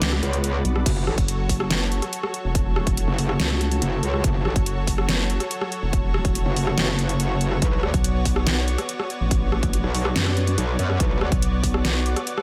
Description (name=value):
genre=heavy wobble dubstep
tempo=142 BPM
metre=4/4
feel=half-time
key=F# minor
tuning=A4 = 440 Hz
part: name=lush unison pad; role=sustained chords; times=0.0-12.4 s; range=F#3 to D5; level=-32 LUFS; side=equal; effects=chorus, sidechain pumping
part: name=vowel-sweep wobble bass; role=bass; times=0.0-12.1 s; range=E1 to F#2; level=-26 LUFS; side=equal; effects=chorus, overdrive
part: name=dubstep drum kit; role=drums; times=0.0-12.4 s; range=crash cymbal, hi-hat, rim click, snare drum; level=-28 LUFS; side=equal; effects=overdrive
part: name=metallic wobble bass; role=bass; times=0.2-11.3 s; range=F#1 to F#2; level=-25 LUFS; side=equal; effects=distortion, chorus, overdrive
part: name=electronic kick drum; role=drums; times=0.9-11.7 s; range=none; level=-26 LUFS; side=equal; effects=overdrive
room=little or no reverb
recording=none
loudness=-22 LUFS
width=mono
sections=0.0-12.4 A section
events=none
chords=0.0 Bmadd9; 0.9 F#m; 7.6 Bmadd9